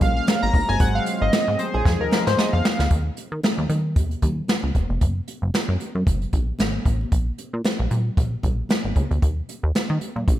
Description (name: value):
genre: early-eighties boogie funk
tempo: 114 BPM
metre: 4/4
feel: swing 56% on 16ths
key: unclear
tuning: A4 = 441 Hz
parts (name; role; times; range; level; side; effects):
- chorused polysynth; accompaniment; 0.0-2.9 s; Ab4 to Bb5; -23 LUFS; left 1 dB; none
- chorused pulse-width pad; sustained chords; 0.0-2.9 s; F3 to Ab4; -29 LUFS; equal; none
- plucky analog bass; bass; 0.0-10.4 s; E1 to Eb3; -23 LUFS; equal; none
- jazz brush drum kit; drums; 0.0-10.4 s; hi-hat, kick drum, snare drum; -22 LUFS; equal; gated reverb
- congas; percussion; 0.0-10.4 s; none; -33 LUFS; right 1 dB; none
room: light reverb, studio reverb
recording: none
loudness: -20 LUFS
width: side -13 dB against mid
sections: 0.0-2.9 A section; 2.9-10.4 B section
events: analog polysynth solo 0.0-2.9; drum fill 1.9-2.9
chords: 0.0 Bbm7; 0.5 Ab9; 1.9 Fm7; 2.9 N.C.; 5.0 Gbadd9; 7.1 N.C.; 9.2 Eb5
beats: 0.28 | 0.80 1.33 1.86 2.38 | 2.91 3.44 3.96 4.49 | 5.01 5.54 6.07 6.59 | 7.12 7.65 8.17 8.70 | 9.22 9.75 10.28